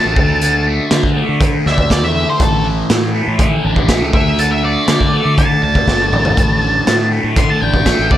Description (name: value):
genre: psychedelic rock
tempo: 121 BPM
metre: 4/4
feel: straight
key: unclear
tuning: A4 = 438 Hz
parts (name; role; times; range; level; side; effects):
- octave-fuzz lead guitar; melody; 0.0-8.2 s; A4 to C6; -18 LUFS; equal; distortion, analog delay
- overdriven electric guitar; riff; 0.0-8.2 s; A2 to D4; -18 LUFS; equal; phaser
- fuzz fingered electric bass; bass; 0.1-8.2 s; G1 to D3; -18 LUFS; equal; overdrive
- raw garage drum kit; drums; 0.2-8.2 s; hi-hat, kick drum, snare drum, toms; -16 LUFS; equal; none
room: studio reverb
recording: none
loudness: -11 LUFS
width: side -12 dB against mid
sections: 0.0-8.2 A section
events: lead electric guitar solo 0.0-8.2; drum fill 5.9-6.4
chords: 0.2 D5; 2.4 Asus4; 4.1 D5; 6.4 Asus4